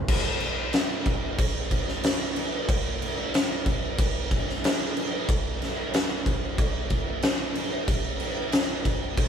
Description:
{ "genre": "metal", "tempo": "92 BPM", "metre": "4/4", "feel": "straight", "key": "none", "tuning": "none", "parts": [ { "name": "oversized low-tuned drum kit", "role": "drums", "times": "0.1-9.3 s", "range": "crash cymbal, kick drum, snare drum", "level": "-24 LUFS", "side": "equal", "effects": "none" } ], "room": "little or no reverb", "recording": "band playing live in one room", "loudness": "-24 LUFS", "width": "side -8 dB against mid", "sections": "0.1-9.3 A section", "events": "none", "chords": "none", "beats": "| 0.09 0.74 1.39 2.04 | 2.69 3.34 3.99 4.64 | 5.29 5.94 6.58 7.23 | 7.88 8.53 9.18" }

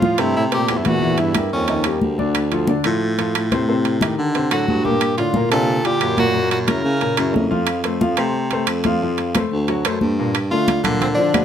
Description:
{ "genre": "Afro-Cuban jazz", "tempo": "180 BPM", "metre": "4/4", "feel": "straight", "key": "F major", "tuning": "A4 = 440 Hz", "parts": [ { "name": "bright tenor saxophone", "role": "melody", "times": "0.0-2.0, 4.5-7.5, 10.5-11.4 s", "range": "C4 to Bb4", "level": "-22 LUFS", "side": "equal", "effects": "plate reverb" }, { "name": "breathy trombone", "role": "second line", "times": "0.0-2.0, 4.5-7.5, 10.5-11.4 s", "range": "F2 to A3", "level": "-25 LUFS", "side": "right 4 dB", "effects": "none" }, { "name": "warm concert grand piano", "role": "accompaniment", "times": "0.0-11.4 s", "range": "Bb2 to F#5", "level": "-21 LUFS", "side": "left 3 dB", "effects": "none" }, { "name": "congas", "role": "percussion", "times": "0.0-11.4 s", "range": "none", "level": "-23 LUFS", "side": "left 1 dB", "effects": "none" }, { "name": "clear baritone saxophone", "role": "bass", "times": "0.2-11.4 s", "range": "D2 to D3", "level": "-22 LUFS", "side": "equal", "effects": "none" }, { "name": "claves", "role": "percussion", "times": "0.2-11.4 s", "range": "none", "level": "-32 LUFS", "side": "left 4 dB", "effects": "none" }, { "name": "timbales", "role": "percussion", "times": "0.2-11.4 s", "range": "none", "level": "-25 LUFS", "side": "right 9 dB", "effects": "none" } ], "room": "light reverb", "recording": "none", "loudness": "-16 LUFS", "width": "side -9 dB against mid", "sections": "0.0-10.3 A section; 10.3-11.4 B section", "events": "none", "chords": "0.0 Fmaj7; 1.0 Edim; 1.7 Eb9; 2.4 Dm7; 3.7 Am7b5; 4.4 D7; 5.0 Gm11; 6.4 Gb7; 7.7 F; 9.7 D7b13; 10.3 Gm9", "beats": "0.02 0.35 0.69 | 1.02 1.35 1.69 2.02 | 2.35 2.69 3.02 3.35 | 3.69 4.02 4.35 4.68 | 5.02 5.35 5.68 6.02 | 6.35 6.68 7.02 7.35 | 7.68 8.02 8.35 8.68 | 9.01 9.35 9.68 10.01 | 10.34 10.68 11.01 11.34" }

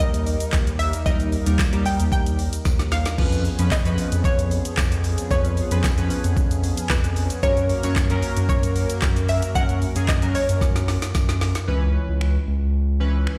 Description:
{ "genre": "dance-pop", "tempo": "113 BPM", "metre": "4/4", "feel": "straight", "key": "unclear", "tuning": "A4 = 441 Hz", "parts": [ { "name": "analog pluck", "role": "melody", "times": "0.0-11.4 s", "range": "B4 to G5", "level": "-30 LUFS", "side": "equal", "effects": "chorus, tape echo" }, { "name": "chorused retro synth keys", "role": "accompaniment", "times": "0.0-13.4 s", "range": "E3 to C#5", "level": "-31 LUFS", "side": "equal", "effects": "none" }, { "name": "chorused pulse-width pad", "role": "sustained chords", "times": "0.0-11.6 s", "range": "E#3 to A#4", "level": "-34 LUFS", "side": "equal", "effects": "sidechain pumping" }, { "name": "saturated sub bass", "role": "bass", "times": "0.0-13.3 s", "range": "C#2 to F#2", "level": "-24 LUFS", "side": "equal", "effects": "sidechain pumping" }, { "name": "smooth R&B drum kit", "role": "drums", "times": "0.0-13.4 s", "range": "crash cymbal, finger snaps, handclaps, hi-hat, kick drum, shaker, snare drum", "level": "-26 LUFS", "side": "equal", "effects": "none" }, { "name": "tambourine", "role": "percussion", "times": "0.5-11.3 s", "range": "none", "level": "-42 LUFS", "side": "equal", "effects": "none" } ], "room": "light reverb", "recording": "played on a big sound system in a bare room, stone room reverb", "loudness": "-21 LUFS", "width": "mono", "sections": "0.0-11.7 A section; 11.7-13.4 B section", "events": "drum fill 2.7-3.2, 10.6-11.7", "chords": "0.0 D#; 3.2 C#7/E#; 7.4 F#; 11.7 C#m7", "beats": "0.00 0.53 | 1.06 1.59 2.12 2.65 | 3.18 3.71 4.25 4.78 | 5.31 5.84 6.37 6.90 | 7.43 7.96 8.49 9.02 | 9.55 10.09 10.62 11.15 | 11.68 12.21 12.74 13.27" }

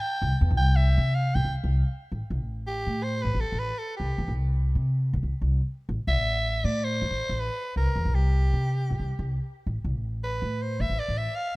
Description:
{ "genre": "progressive instrumental, band music in an uneven meter", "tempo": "159 BPM", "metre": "5/4", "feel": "straight", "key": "A minor", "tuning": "A4 = 442 Hz", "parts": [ { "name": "raspy soprano saxophone", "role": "melody", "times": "0.0-11.6 s", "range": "G4 to G5", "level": "-30 LUFS", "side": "equal", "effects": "none" }, { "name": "upright bass", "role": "bass", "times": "0.2-11.3 s", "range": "A1 to C3", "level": "-24 LUFS", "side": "equal", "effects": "none" } ], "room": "studio reverb", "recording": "rough home demo mix", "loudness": "-24 LUFS", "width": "side -21 dB against mid", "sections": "0.0-2.1 A section; 2.1-11.6 B section", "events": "soprano saxophone solo 0.0-2.1", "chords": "0.2 C; 2.1 N.C.; 5.9 Am; 7.8 C7(no3); 9.7 A5", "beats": "| 0.22 0.60 0.98 1.35 1.73 | 2.11 2.49 2.87 3.24 3.62 | 4.00 4.38 4.76 5.14 5.51 | 5.89 6.27 6.65 7.03 7.40 | 7.78 8.16 8.53 8.91 9.29 | 9.66 10.04 10.42 10.80 11.17 | 11.55" }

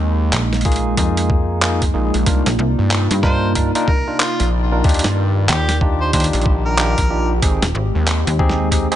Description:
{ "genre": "glitch hop", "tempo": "93 BPM", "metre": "4/4", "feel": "swing 62% on 16ths", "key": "C minor", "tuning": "A4 = 440 Hz", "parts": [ { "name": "warbly tape-like pad", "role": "sustained chords", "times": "0.0-9.0 s", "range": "C3 to D5", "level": "-24 LUFS", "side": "right 1 dB", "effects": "chorus, built-in reverb, sidechain pumping" }, { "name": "gritty driven synth bass", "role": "bass", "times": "0.0-8.2 s", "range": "Ab1 to G2", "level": "-18 LUFS", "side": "equal", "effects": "overdrive" }, { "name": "slap-like FM bass", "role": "bass", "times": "0.3-8.9 s", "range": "Eb1 to G2", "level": "-19 LUFS", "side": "equal", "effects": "none" }, { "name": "boom bap sampler-style drum kit", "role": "drums", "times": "0.3-9.0 s", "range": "handclaps, hi-hat, snare drum", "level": "-21 LUFS", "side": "right 1 dB", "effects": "none" }, { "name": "barky tine electric piano", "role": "stabs", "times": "0.7-9.0 s", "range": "Bb3 to Bb4", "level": "-23 LUFS", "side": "equal", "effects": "medium stereo tremolo, sidechain pumping, ping-pong delay" }, { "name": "electronic kick drum", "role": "drums", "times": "0.7-8.9 s", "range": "none", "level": "-18 LUFS", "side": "equal", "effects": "none" }, { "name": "mellow harmonica", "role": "melody", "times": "3.2-7.3 s", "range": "F4 to C5", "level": "-24 LUFS", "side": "left 1 dB", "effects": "vintage 12-bit sampler grit, ping-pong delay" } ], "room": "digital ambience", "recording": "nothing above 10.8 kHz", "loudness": "-14 LUFS", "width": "side -11 dB against mid", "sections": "0.0-9.0 A section", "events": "none", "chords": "0.0 Bb7sus4; 2.3 Cm11; 4.8 Ebmaj9; 7.4 Abmaj7", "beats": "0.33 0.97 1.62 | 2.27 2.91 3.56 4.20 | 4.85 5.49 6.14 6.78 | 7.43 8.07 8.72" }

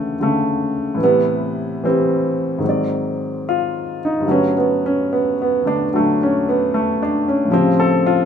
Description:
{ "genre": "jazz ballad", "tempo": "74 BPM", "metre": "4/4", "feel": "swing 69% on 8ths", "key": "unclear", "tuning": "A4 = 441 Hz", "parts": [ { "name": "warm baby grand piano", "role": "solo", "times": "0.0-8.3 s", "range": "G2 to D5", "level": "-16 LUFS", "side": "equal", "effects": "none" } ], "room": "wet studio reverb, RT60 0.9 s", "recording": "minimal, uncompressed stereo recording", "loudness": "-16 LUFS", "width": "side -8 dB against mid", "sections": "0.0-8.3 A section", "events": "none", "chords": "0.0 Bm11; 1.0 Am7; 2.6 G#7#11; 4.2 Gmaj9; 7.5 A7alt", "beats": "0.17 | 0.98 1.79 2.61 3.43 | 4.25 5.06 5.87 6.68 | 7.49" }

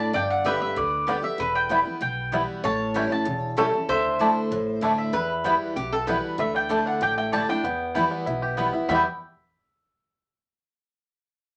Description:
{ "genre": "bluegrass", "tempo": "192 BPM", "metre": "4/4", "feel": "straight", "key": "E minor", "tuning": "A4 = 440 Hz", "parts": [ { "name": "mandolin", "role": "melody", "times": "0.0-9.0 s", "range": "D5 to A5", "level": "-30 LUFS", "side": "equal", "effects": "none" }, { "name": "lap resonator guitar", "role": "second line", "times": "0.0-6.4 s", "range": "G4 to D5", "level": "-30 LUFS", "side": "equal", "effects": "none" }, { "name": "picked steel-string acoustic guitar", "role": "accompaniment", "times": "0.0-9.0 s", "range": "E2 to G4", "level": "-31 LUFS", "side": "equal", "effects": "none" }, { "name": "upright bass", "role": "bass", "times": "0.0-9.0 s", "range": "E1 to E2", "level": "-40 LUFS", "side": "equal", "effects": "none" }, { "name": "mandolin", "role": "stabs", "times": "0.4-9.0 s", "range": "A3 to A5", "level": "-27 LUFS", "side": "equal", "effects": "none" }, { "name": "bluegrass banjo", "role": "melody", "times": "0.5-9.1 s", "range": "E3 to G4", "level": "-31 LUFS", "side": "equal", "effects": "none" } ], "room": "wet studio reverb, RT60 0.5 s", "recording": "none", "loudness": "-24 LUFS", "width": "mono", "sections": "0.0-6.4 A section; 6.4-8.9 B section; 8.9-10.1 C section", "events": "none", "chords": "0.1 G; 1.4 Em; 2.6 A7; 3.9 Dsus2; 5.1 Em; 6.4 Dsus2; 7.6 Em", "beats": "| 0.14 0.46 0.77 1.08 | 1.39 1.71 2.02 2.33 | 2.64 2.95 3.27 3.58 | 3.89 4.20 4.52 4.83 | 5.14 5.45 5.76 6.08 | 6.39 6.70 7.01 7.33 | 7.64 7.95 8.26 8.57 | 8.89" }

